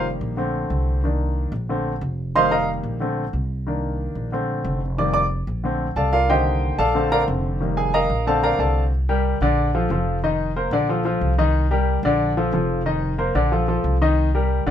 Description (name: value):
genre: latin, salsa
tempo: 183 BPM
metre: 4/4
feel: straight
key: Bb major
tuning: A4 = 440 Hz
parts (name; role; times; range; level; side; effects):
- clear grand piano; accompaniment; 0.0-14.7 s; D3 to D6; -21 LUFS; left 1 dB; none
- upright bass; bass; 0.0-14.7 s; F1 to C2; -23 LUFS; equal; none
room: moderate studio reverb, RT60 0.6 s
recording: minimal, uncompressed stereo recording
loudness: -19 LUFS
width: side -10 dB against mid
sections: 0.0-8.9 A section; 8.9-14.7 B section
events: grand piano solo 0.0-8.9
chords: 0.4 Bbmaj7; 1.0 Cm7; 1.7 Bbmaj7; 2.4 F7sus4; 3.0 Bbmaj7; 3.7 Cm7; 4.3 Bbmaj7; 5.0 F7sus4; 5.6 Bbmaj7; 6.3 Cm7; 7.0 Bbmaj7; 7.6 F7sus4; 8.3 Bbmaj7; 8.9 C5; 9.6 Bbmaj7; 10.2 F7sus4; 10.9 Bb5; 11.5 Cm7; 12.2 Bbmaj7; 12.9 F7sus4; 13.5 Bb5; 14.2 Cm7